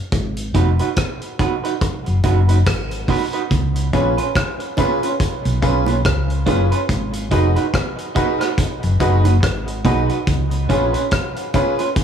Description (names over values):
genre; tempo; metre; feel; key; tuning
dub reggae; 71 BPM; 4/4; swing 58% on 16ths; G# dorian; A4 = 440 Hz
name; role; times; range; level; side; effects
hollow-body short-scale fingered electric bass; bass; 0.1-10.9 s; E#1 to C#2; -18 LUFS; equal; none
vintage drum kit; drums; 0.1-12.0 s; hi-hat, kick drum, rim click; -21 LUFS; equal; none
electric guitar at the edge of break-up; accompaniment; 0.5-11.9 s; C#4 to B4; -22 LUFS; right 7 dB; spring reverb, dub echo
bright concert grand piano; stabs; 3.9-11.8 s; C#4 to B4; -23 LUFS; left 3 dB; dub echo
bongos; percussion; 4.8-10.1 s; none; -27 LUFS; right 9 dB; dub echo
room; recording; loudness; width
light reverb; small room ambience; -16 LUFS; side -8 dB against mid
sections
0.0-12.0 A section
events
break 0.0-3.5; part muted 10.3-12.0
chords
0.1 G#m7; 3.5 C#7; 6.9 G#m7; 10.3 C#7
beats
| 0.12 0.97 1.81 2.66 | 3.50 4.35 5.20 6.04 | 6.89 7.73 8.58 9.43 | 10.27 11.12 11.96